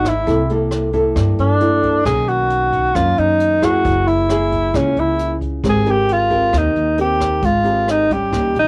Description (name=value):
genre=bossa nova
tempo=134 BPM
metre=4/4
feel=straight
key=unclear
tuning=A4 = 441 Hz
part: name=breathy alto saxophone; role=melody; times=0.0-8.7 s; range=Db4 to Ab4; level=-18 LUFS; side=equal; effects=cassette tape
part: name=nylon-string guitar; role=accompaniment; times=0.0-8.7 s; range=F#2 to Bb4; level=-23 LUFS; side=equal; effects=cassette tape
part: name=upright bass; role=bass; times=0.0-8.7 s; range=Gb1 to G2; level=-24 LUFS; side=equal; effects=none
part: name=jazz brush drum kit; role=drums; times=0.0-8.7 s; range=hi-hat, kick drum, rim click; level=-29 LUFS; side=equal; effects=cassette tape
room=light reverb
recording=home recording on cassette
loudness=-16 LUFS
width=mono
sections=0.0-8.7 A section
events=none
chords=0.3 C13; 2.1 Bmaj9; 3.9 Gb9; 5.6 Abmaj9